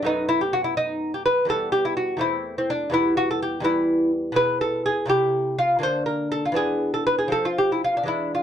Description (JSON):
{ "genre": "classical, baroque-style dance for lute", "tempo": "83 BPM (dotted quarters)", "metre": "6/8", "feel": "rubato", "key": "E minor", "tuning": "A4 = 441 Hz", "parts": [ { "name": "lute", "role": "solo", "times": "0.0-8.4 s", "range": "E2 to C5", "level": "-20 LUFS", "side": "equal", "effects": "none" } ], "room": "light reverb", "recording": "dark, warm production", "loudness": "-20 LUFS", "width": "side -9 dB against mid", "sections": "0.0-8.4 A section", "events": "none", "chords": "0.0 B5/F#; 1.5 Em; 2.2 Am/E; 2.9 Em; 4.4 E/B; 5.1 Am/C; 5.8 Bb/D; 6.6 E7; 7.3 F", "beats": "| 0.04 0.76 | 1.49 2.21 | 2.93 3.64 | 4.37 5.09 | 5.82 6.56 | 7.31 8.08" }